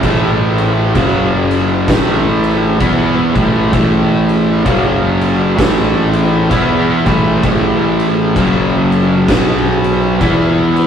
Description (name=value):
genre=stoner and doom metal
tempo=65 BPM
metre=4/4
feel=swing 60% on 8ths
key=unclear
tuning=A4 = 440 Hz
part: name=fuzz guitar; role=riff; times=0.0-10.9 s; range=F#2 to E4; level=-13 LUFS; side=equal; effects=distortion
part: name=fuzz picked electric bass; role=bass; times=0.0-10.9 s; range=F#1 to E2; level=-19 LUFS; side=equal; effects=overdrive, tube saturation
part: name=oversized low-tuned drum kit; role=drums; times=0.0-10.9 s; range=crash cymbal, kick drum, snare drum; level=-16 LUFS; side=left 1 dB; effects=none
room=light reverb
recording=rough rehearsal-room recording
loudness=-10 LUFS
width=side -8 dB against mid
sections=0.0-10.9 A section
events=none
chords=0.0 A5; 1.0 F#5; 1.9 A5; 4.7 F#5; 5.6 A5; 8.4 F#5; 9.3 B5; 10.2 E5